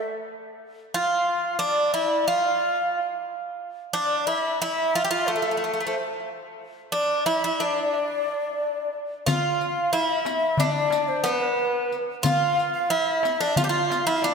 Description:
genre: Turkish makam ensemble.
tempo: 180 BPM (eighths).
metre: 9/8.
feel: straight.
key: D makam huseyni.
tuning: A4 = 441 Hz.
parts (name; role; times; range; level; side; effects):
breathy bright ney; second line; 0.0-14.3 s; A4 to F5; -27 LUFS; left 2 dB; none.
Greek bouzouki; melody; 0.9-14.3 s; A3 to G4; -24 LUFS; right 2 dB; diffuse ambient delay.
darbuka; percussion; 9.3-14.3 s; none; -28 LUFS; left 1 dB; none.
riq; percussion; 9.3-14.3 s; none; -34 LUFS; left 7 dB; none.
room: wet lush hall reverb, RT60 2.5 s.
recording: dreamy mix soaked in reverb.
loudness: -22 LUFS.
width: side -5 dB against mid.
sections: 0.0-9.3 A section; 9.3-14.3 B section.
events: none.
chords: none.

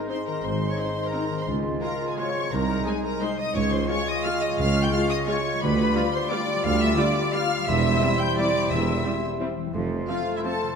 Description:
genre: classical, orchestral ballroom waltz.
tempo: 174 BPM.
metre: 3/4.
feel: uneven beats, rubato.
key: C major from 5.6 s.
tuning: A4 = 441 Hz.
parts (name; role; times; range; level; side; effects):
mellow cor anglais; second line; 0.0-10.8 s; C5 to D5; -35 LUFS; right 4 dB; none.
rich studio violin section; second line; 0.0-10.8 s; E4 to G5; -34 LUFS; left 2 dB; none.
small flute group; second line; 0.0-10.8 s; E4 to G5; -31 LUFS; left 1 dB; none.
warm clarinet; second line; 0.0-10.8 s; Eb4 to F4; -34 LUFS; left 3 dB; none.
dark bassoon; accompaniment; 0.0-10.8 s; G3 to A3; -32 LUFS; right 1 dB; none.
concert harp; arpeggios; 0.0-10.8 s; E2 to C6; -32 LUFS; left 8 dB; none.
rich studio violin section; melody; 0.1-10.8 s; E5 to G6; -31 LUFS; left 4 dB; none.
rich studio viola section; accompaniment; 0.1-10.5 s; F3 to F4; -36 LUFS; right 1 dB; none.
mellow French horn section; sustained chords; 0.1-10.6 s; G3 to F4; -34 LUFS; left 4 dB; none.
dark tuba; bass; 0.4-10.0 s; E1 to D2; -31 LUFS; right 4 dB; none.
rich studio cello section; bass; 0.4-10.0 s; C2 to Ab2; -32 LUFS; right 3 dB; none.
warm studio double bass section; bass; 0.4-10.0 s; E1 to D2; -31 LUFS; right 5 dB; none.
room: wet concert hall reverb, RT60 1.9 s.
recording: none.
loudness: -22 LUFS.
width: side -6 dB against mid.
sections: 0.0-10.8 A section.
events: none.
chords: 0.0 Ab; 1.5 Dbmaj7; 2.5 Ab/C; 3.6 Db; 5.6 G7/D; 7.7 C/E; 9.8 F.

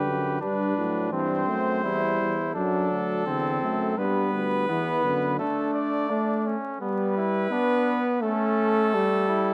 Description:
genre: classical, imitative canzona for brass ensemble.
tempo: 84 BPM.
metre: 4/4.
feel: straight.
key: G major.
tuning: A4 = 438 Hz.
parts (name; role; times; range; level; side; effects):
mellow trumpet; melody; 0.0-9.5 s; A4 to D5; -31 LUFS; equal; none.
clear flugelhorn; second line; 0.0-9.5 s; A3 to G4; -31 LUFS; equal; none.
mellow trombone; accompaniment; 0.0-9.5 s; D3 to D4; -29 LUFS; equal; none.
bright bass trombone; bass; 0.0-5.4 s; D2 to A2; -33 LUFS; equal; none.
room: moderate recital hall reverb, RT60 1.4 s.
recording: close, detailed microphones, vinyl crackle.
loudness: -25 LUFS.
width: mono.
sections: 0.0-9.5 A section.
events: none.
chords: 0.0 G; 1.1 C; 2.6 D; 4.0 G; 5.4 D5/A; 6.8 G; 8.2 A.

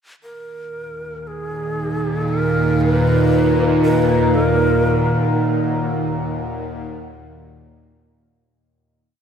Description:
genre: dark ambient drone.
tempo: free time.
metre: none.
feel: none.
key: Eb minor.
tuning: A4 = 440 Hz.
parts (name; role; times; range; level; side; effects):
breathy long shakuhachi; melody; 0.2-5.4 s; Ab4 to Cb5; -23 LUFS; equal; ping-pong delay.
deep dark ambient pad; sustained chords; 1.5-8.5 s; Eb4 to Bb5; -20 LUFS; right 1 dB; chorus, built-in reverb.
bowed-like drone; drone; 1.8-8.6 s; Eb2 to Bb2; -20 LUFS; equal; built-in reverb, phaser.
room: wet cathedral reverb, RT60 6.6 s.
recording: in a vast, echoing space.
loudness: -15 LUFS.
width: side -7 dB against mid.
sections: 0.2-8.5 A section.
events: fade-in on synth drone 0.2-8.5; fade-in on shakuhachi 0.2-8.5; fade-out on ambient pad 0.2-8.5; fade-out 4.4-8.5.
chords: 0.2 Ebm.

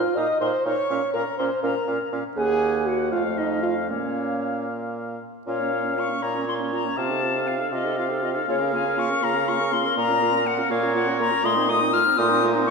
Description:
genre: quick classical-period movement for wind quintet.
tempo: 81 BPM (dotted quarters).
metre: 6/8.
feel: straight.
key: Bb minor.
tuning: A4 = 440 Hz.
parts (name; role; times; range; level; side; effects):
silver concert flute; melody; 0.0-12.7 s; Db5 to F6; -26 LUFS; left 6 dB; none.
warm oboe; second line; 0.0-12.7 s; C5 to Gb5; -29 LUFS; left 3 dB; none.
bright clarinet; accompaniment; 0.0-12.7 s; A3 to Bb4; -30 LUFS; right 6 dB; none.
mellow French horn; accompaniment; 0.0-12.7 s; A3 to Eb5; -27 LUFS; right 1 dB; none.
clear bassoon; bass; 0.0-12.7 s; Eb2 to Db3; -28 LUFS; right 2 dB; none.
room: wet recital hall reverb, RT60 1.6 s.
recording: heard from further back in the room.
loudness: -21 LUFS.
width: side -4 dB against mid.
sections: 0.0-5.5 A section; 5.5-12.7 A section.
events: none.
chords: 0.0 F5/Bb; 0.9 Bbm; 2.4 Ebm; 3.1 F; 3.9 Bbm; 7.0 F7/C; 8.5 Bbm/Db; 10.0 Bbm; 11.4 F7/Bb.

